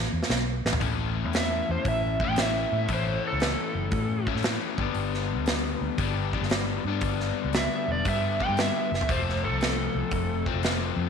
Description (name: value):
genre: blues rock power trio and southern rock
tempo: 116 BPM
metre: 4/4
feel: swing 68% on 8ths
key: unclear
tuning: A4 = 441 Hz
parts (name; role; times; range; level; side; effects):
- vintage muted fingered electric bass; bass; 0.0-11.1 s; E1 to A2; -30 LUFS; equal; none
- big rock drum kit; drums; 0.2-10.8 s; hi-hat, kick drum, snare drum, toms; -29 LUFS; right 1 dB; none
- overdriven electric guitar; riff; 0.8-11.1 s; F2 to E4; -30 LUFS; left 13 dB; none
- overdriven slide guitar; melody; 1.4-4.3, 7.6-10.4 s; A4 to G5; -30 LUFS; right 4 dB; none
room: light reverb, small room reverb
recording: 1960s-style stereo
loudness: -24 LUFS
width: side -6 dB against mid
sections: 0.8-11.1 A section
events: drum fill 0.0-0.8, 8.8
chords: 0.0 N.C.; 0.8 A; 4.7 G; 9.1 F